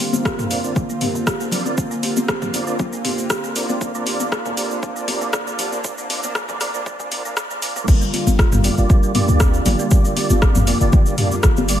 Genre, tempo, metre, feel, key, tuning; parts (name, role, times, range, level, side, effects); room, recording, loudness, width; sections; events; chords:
afro house; 118 BPM; 4/4; swing 53% on 16ths; G minor pentatonic; A4 = 440 Hz
warm analog pad; sustained chords; 0.0-11.8 s; D3 to F4; -27 LUFS; left 1 dB; chorus, sidechain pumping
folk marimba with soft mallets; arpeggios; 0.0-11.8 s; G3 to G4; -27 LUFS; right 2 dB; sidechain pumping, low-pass filter, tape echo
deep house drum kit; drums; 0.0-11.8 s; cabasa, crash cymbal, hi-hat, rim click, toms; -23 LUFS; equal; overdrive
congas; percussion; 0.0-11.7 s; -26 LUFS; left 4 dB
warm 808-style bass; bass; 0.1-11.8 s; G1 to G2; -19 LUFS; equal; sidechain pumping, high-pass filter
electronic kick drum; drums; 0.3-11.5 s; -16 LUFS; equal; overdrive
mellow tonewheel organ; stabs; 0.5-11.8 s; Bb3 to D5; -26 LUFS; right 3 dB; chorus vibrato, slow rotary speaker, sidechain pumping, low-pass filter, tape echo
light reverb, digital ambience; high-pass filter; -16 LUFS; side -11 dB against mid
0.0-7.9 A section; 7.9-11.8 B section
build-up 0.0-7.9; filter sweep on marimba 0.0-7.9; filter sweep 0.0-7.9; drop 7.9-11.8
0.0 Gm7